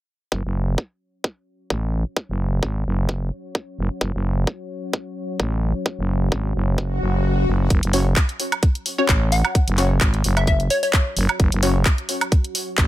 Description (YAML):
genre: bass house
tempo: 130 BPM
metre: 4/4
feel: swing 54% on 16ths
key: F# minor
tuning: A4 = 440 Hz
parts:
  - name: growling FM bass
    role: bass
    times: 0.3-12.9 s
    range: F#1 to A1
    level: -20 LUFS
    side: equal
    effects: tube saturation, sidechain pumping
  - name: electronic kick drum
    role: drums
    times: 0.3-12.9 s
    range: none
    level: -19 LUFS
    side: equal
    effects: high-pass filter on kick
  - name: deep dark ambient pad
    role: texture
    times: 2.9-12.9 s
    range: F#4 to F#5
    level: -34 LUFS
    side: left 3 dB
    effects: chorus, built-in reverb, sidechain pumping
  - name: swell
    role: sound effects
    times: 6.9-7.7 s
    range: none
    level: -26 LUFS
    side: left 2 dB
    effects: none
  - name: garage drum kit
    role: drums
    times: 7.7-12.9 s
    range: handclaps, hi-hat, woodblock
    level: -23 LUFS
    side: right 1 dB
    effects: none
  - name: band-passed chord stab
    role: stabs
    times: 7.9-11.7 s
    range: C#4 to C#5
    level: -24 LUFS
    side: left 2 dB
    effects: chorus, sidechain pumping, tape echo
  - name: hollow square pluck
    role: melody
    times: 9.0-10.9 s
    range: C#5 to F#5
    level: -24 LUFS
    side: left 1 dB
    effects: chorus, tape echo
room: digital ambience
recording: none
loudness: -19 LUFS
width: side -14 dB against mid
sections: 0.3-7.7 A section; 7.7-12.9 B section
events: swell 6.9-7.7; kick drops out 7.2-7.7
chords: 0.3 F#5